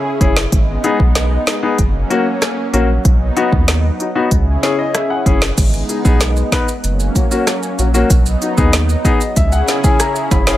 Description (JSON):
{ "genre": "dancehall", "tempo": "95 BPM", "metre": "4/4", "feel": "straight", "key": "G# minor", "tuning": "A4 = 440 Hz", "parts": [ { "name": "lush unison pad", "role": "sustained chords", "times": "0.0-10.6 s", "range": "C#3 to G#4", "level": "-21 LUFS", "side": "right 1 dB", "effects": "chorus, sidechain pumping" }, { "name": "clear grand piano", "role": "accompaniment", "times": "0.2-10.6 s", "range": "A#3 to B5", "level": "-18 LUFS", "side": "left 4 dB", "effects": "sidechain pumping" }, { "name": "saturated sub bass", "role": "bass", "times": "0.2-10.6 s", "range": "F#1 to D#2", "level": "-16 LUFS", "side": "equal", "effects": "none" }, { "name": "afro-pop drum kit", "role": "drums", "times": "0.2-10.6 s", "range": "crash cymbal, hi-hat, kick drum, rim click, snare drum", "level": "-15 LUFS", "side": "equal", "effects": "none" }, { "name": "maracas and timbales", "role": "percussion", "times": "5.6-10.6 s", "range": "none", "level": "-26 LUFS", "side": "right 6 dB", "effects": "none" } ], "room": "digital ambience", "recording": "none", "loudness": "-12 LUFS", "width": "side -14 dB against mid", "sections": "0.0-5.6 A section; 5.6-10.6 B section", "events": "grand piano fill 4.3-5.6, 8.7-10.6", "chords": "0.0 C#m; 0.5 G#m; 1.8 F#; 3.0 B; 4.3 C#m; 5.6 G#m; 6.8 F#; 8.1 B; 9.4 C#m", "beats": "| 0.52 1.16 1.79 2.42 | 3.05 3.68 4.31 4.94 | 5.58 6.21 6.84 7.47 | 8.10 8.73 9.37 10.00" }